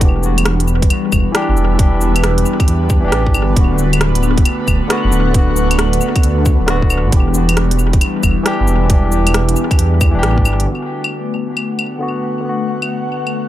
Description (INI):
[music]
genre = future garage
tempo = 135 BPM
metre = 4/4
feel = swing 65% on 16ths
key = unclear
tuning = A4 = 441 Hz
[part]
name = barky tine electric piano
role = accompaniment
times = 0.0-13.5 s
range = D3 to G4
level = -20 LUFS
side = left 2 dB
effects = sidechain pumping, low-pass filter, dub echo
[part]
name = airy breathy pad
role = sustained chords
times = 0.0-13.5 s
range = G3 to F#5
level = -20 LUFS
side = equal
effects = chorus, phaser, sidechain pumping
[part]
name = dark detuned saw bass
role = bass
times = 0.0-10.7 s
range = D1 to E2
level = -15 LUFS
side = equal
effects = sidechain pumping
[part]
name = electronic kick drum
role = drums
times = 0.0-10.4 s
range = none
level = -13 LUFS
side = equal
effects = small room reverb
[part]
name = organic electronic drum kit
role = drums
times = 0.0-13.3 s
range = cabasa, claves, hi-hat, rim click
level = -20 LUFS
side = equal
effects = overdrive, small room reverb, tape echo
[sound]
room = little or no reverb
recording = echo-heavy mix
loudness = -12 LUFS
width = side -13 dB against mid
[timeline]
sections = 0.0-10.7 A section; 10.7-13.5 B section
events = band accent 10.2; filter sweep on tine electric piano 10.7-13.5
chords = 0.0 Em7; 3.6 D6; 7.1 Em7; 10.7 D6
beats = | 0.01 0.46 0.90 1.34 | 1.79 2.23 2.68 3.12 | 3.57 4.01 4.46 4.90 | 5.34 5.79 6.23 6.68 | 7.12 7.57 8.01 8.46 | 8.90 9.34 9.79 10.23 | 10.68 11.12 11.57 12.01 | 12.46 12.90 13.34